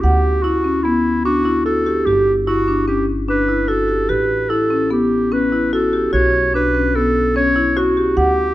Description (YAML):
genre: contemporary instrumental, chamber music in an uneven meter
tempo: 147 BPM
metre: 5/4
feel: straight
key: unclear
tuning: A4 = 440 Hz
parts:
  - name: clear clarinet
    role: melody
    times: 0.0-8.5 s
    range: E4 to C#5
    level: -18 LUFS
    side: right 2 dB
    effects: none
  - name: marimba with medium hard mallets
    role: arpeggios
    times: 0.0-8.5 s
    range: B3 to F#5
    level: -17 LUFS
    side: left 2 dB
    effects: none
  - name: upright bass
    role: bass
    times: 0.0-8.5 s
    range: G1 to D2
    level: -23 LUFS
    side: right 1 dB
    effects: none
room: moderate recital hall reverb, RT60 1.4 s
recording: dark, warm production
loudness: -14 LUFS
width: side -15 dB against mid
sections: 0.0-8.5 A section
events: none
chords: 0.0 D69; 2.1 G5; 4.1 A7; 6.1 Bsus2